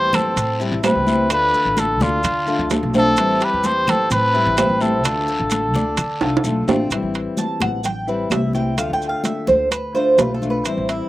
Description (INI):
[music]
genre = latin, Cuban son and guajira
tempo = 128 BPM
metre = 4/4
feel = straight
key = A minor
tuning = A4 = 440 Hz
[part]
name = trumpet with cup mute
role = melody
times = 0.0-6.7 s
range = F4 to C5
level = -19 LUFS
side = equal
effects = slapback echo
[part]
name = fingerpicked steel-string acoustic guitar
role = accompaniment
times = 0.0-11.1 s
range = D3 to F4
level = -24 LUFS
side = left 4 dB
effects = slapback echo
[part]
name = Cuban tres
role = arpeggios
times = 0.0-11.1 s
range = C4 to A5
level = -22 LUFS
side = right 2 dB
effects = slapback echo
[part]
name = upright bass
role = bass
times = 0.0-11.0 s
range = A1 to D3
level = -26 LUFS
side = equal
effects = none
[part]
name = claves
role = percussion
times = 0.1-10.9 s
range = none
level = -32 LUFS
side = right 1 dB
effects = none
[part]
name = congas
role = percussion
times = 0.1-11.1 s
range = none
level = -24 LUFS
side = left 1 dB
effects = none
[part]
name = guiro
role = percussion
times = 0.1-6.9 s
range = none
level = -34 LUFS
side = left 3 dB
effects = none
[part]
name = maracas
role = percussion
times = 0.1-11.1 s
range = none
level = -32 LUFS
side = right 4 dB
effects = none
[part]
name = timbales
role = percussion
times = 0.1-11.1 s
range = none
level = -23 LUFS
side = right 5 dB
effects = none
[sound]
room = little or no reverb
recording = recorded outdoors, with no room sound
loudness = -16 LUFS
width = side -16 dB against mid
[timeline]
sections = 0.0-6.9 A section; 6.9-11.1 B section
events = drum fill 6.2-6.9; Cuban tres solo 6.9-11.1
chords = 0.0 Am7; 1.3 Dm; 3.2 Am7; 5.0 Dm; 6.9 Am7; 8.8 Dm